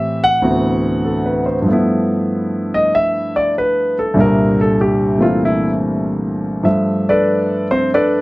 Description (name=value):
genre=solo jazz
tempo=96 BPM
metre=4/4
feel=swing 68% on 8ths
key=G mixolydian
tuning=A4 = 440 Hz
part: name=warm concert grand piano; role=solo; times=0.0-8.2 s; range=C2 to F#5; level=-14 LUFS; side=equal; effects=none
room=wet small room ambience, RT60 0.5 s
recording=dark, warm production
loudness=-14 LUFS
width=side -20 dB against mid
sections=0.0-1.7 A section; 1.7-8.2 B section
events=grand piano solo 1.7-8.2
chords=0.4 D13; 1.7 G13; 4.2 C13; 6.6 G13